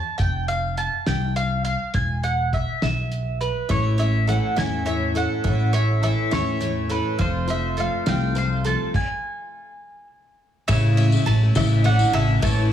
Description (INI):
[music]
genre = indie folk with a building arrangement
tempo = 69 BPM (dotted quarters)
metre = 6/8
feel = straight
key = A major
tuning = A4 = 436 Hz
[part]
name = mandolin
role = melody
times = 0.0-12.7 s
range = B4 to A5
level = -26 LUFS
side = right 1 dB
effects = none
[part]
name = upright bass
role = bass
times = 0.2-12.7 s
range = E1 to E2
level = -22 LUFS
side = equal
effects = none
[part]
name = cloth-damped thuddy drum kit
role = drums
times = 0.2-12.6 s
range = crash cymbal, hi-hat, kick drum, ride cymbal, snare drum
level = -28 LUFS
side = equal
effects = none
[part]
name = fingerpicked steel-string acoustic guitar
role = accompaniment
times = 3.7-8.9 s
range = A2 to A4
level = -30 LUFS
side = left 1 dB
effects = none
[part]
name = picked steel-string acoustic guitar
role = accompaniment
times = 3.7-12.7 s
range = F2 to F4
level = -28 LUFS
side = left 6 dB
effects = none
[part]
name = mandolin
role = arpeggios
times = 3.7-12.7 s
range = A4 to A5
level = -30 LUFS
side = right 6 dB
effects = none
[part]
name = oud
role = second line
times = 10.7-12.7 s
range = C#3 to E3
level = -26 LUFS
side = left 6 dB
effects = none
[part]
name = tambourine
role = percussion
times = 10.7-12.6 s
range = none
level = -36 LUFS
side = left 10 dB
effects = none
[sound]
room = light reverb, studio ambience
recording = studio reverb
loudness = -19 LUFS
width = side -10 dB against mid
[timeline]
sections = 0.0-10.7 A section; 10.7-12.7 B section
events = stop 8.9-10.7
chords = 0.2 F5; 1.9 E5; 3.7 A; 7.2 F; 8.9 N.C.; 10.7 A